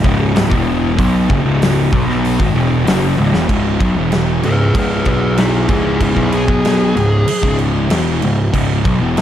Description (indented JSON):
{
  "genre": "stoner and doom metal",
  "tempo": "95 BPM",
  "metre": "4/4",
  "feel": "straight",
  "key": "C# minor",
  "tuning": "A4 = 438 Hz",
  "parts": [
    { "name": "fuzz guitar", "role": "riff", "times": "0.0-9.2 s", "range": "C#2 to B3", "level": "-18 LUFS", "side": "left 7 dB", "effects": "distortion" },
    { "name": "thick fuzz guitar", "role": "riff", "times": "0.0-9.2 s", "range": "C#2 to B3", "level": "-19 LUFS", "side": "right 8 dB", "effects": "distortion" },
    { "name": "fuzz picked electric bass", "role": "bass", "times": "0.0-9.2 s", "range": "C#1 to B1", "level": "-18 LUFS", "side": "equal", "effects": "overdrive" },
    { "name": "big rock drum kit", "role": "drums", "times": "0.0-9.2 s", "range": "crash cymbal, hi-hat, kick drum, snare drum, toms", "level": "-18 LUFS", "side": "equal", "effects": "none" },
    { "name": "fuzz lead guitar", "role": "melody", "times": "4.5-7.6 s", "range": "E4 to B4", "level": "-18 LUFS", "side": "left 1 dB", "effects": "distortion, slapback echo" }
  ],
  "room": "light reverb",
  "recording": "dark, warm production",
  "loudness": "-12 LUFS",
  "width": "side -10 dB against mid",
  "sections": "0.0-3.5 A section; 3.5-9.2 B section",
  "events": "drum fill 3.2-3.5; lead electric guitar solo 3.5-9.2",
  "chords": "0.0 C#m; 5.1 B5; 5.7 C#m"
}